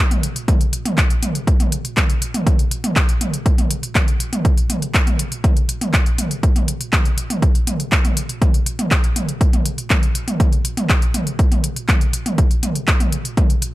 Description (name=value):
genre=techno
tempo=121 BPM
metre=4/4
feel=straight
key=none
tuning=none
part: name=techno drum kit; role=drums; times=0.1-13.7 s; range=handclaps, hi-hat, toms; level=-21 LUFS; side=equal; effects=none
part: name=electronic kick drum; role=drums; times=0.5-13.5 s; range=none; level=-16 LUFS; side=equal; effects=none
room=little or no reverb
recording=none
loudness=-15 LUFS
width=side -17 dB against mid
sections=0.0-13.7 A section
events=none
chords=none